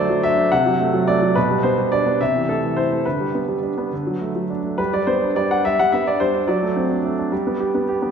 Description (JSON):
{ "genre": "classical-period piano sonatina", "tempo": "71 BPM (dotted quarters)", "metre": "6/8", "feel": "straight", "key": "G major", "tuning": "A4 = 437 Hz", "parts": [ { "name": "clear baby grand piano", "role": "solo", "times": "0.0-8.1 s", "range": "B2 to F#5", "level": "-17 LUFS", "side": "equal", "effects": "none" } ], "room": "wet scoring stage reverb, RT60 2.2 s", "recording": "recorded in a church or concert hall", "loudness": "-17 LUFS", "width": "side -7 dB against mid", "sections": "0.0-4.8 A section; 4.8-8.1 B section", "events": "none", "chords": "0.0 D; 0.5 D7/C; 1.4 G/B; 2.2 Am/C; 3.1 G/D; 3.9 D; 4.8 G; 6.5 D7/F#; 7.3 G" }